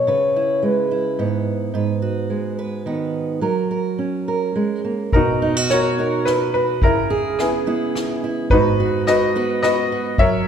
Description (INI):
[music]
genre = acoustic folk-pop ballad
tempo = 107 BPM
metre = 3/4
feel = straight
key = B major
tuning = A4 = 440 Hz
[part]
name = clear French horn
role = second line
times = 0.0-1.5 s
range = B4 to C#5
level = -19 LUFS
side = left 2 dB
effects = none
[part]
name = fingerpicked steel-string acoustic guitar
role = accompaniment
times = 0.0-10.5 s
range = G#2 to B4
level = -21 LUFS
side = right 4 dB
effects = none
[part]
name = bright grand piano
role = melody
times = 5.1-10.5 s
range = B3 to E5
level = -18 LUFS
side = left 1 dB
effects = none
[part]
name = soft-mallet drum kit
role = drums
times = 5.1-10.3 s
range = kick drum, ride cymbal, rim click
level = -23 LUFS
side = left 1 dB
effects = none
[sound]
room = light reverb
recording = none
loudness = -17 LUFS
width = side -8 dB against mid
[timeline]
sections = 0.0-5.1 A section; 5.1-10.5 B section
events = French horn solo 0.0-5.1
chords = 0.1 C#m7; 1.7 G#m7; 3.4 F#; 5.1 Bmaj7; 6.8 C#m7; 8.5 G#m7